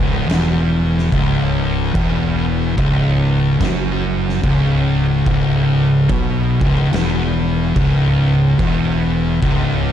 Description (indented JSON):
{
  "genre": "stoner and doom metal",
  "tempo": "72 BPM",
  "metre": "4/4",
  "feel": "swing 62% on 8ths",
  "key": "C# minor",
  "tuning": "A4 = 439 Hz",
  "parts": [
    { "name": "thick fuzz guitar", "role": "riff", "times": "0.0-9.9 s", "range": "C#2 to B2", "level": "-18 LUFS", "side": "left 6 dB", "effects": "distortion" },
    { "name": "thick fuzz guitar", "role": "riff", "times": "0.0-9.9 s", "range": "C#2 to B2", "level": "-19 LUFS", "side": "right 7 dB", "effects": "distortion" },
    { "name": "growling fingered electric bass", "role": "bass", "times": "0.0-9.9 s", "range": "C#1 to B1", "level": "-21 LUFS", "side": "equal", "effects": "overdrive" },
    { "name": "oversized low-tuned drum kit", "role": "drums", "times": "0.3-9.7 s", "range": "crash cymbal, kick drum, snare drum", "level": "-22 LUFS", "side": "equal", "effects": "none" }
  ],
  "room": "small room ambience",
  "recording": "dark, warm production",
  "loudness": "-14 LUFS",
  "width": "side -10 dB against mid",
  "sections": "0.0-9.9 A section",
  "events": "none",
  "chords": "0.0 C#m"
}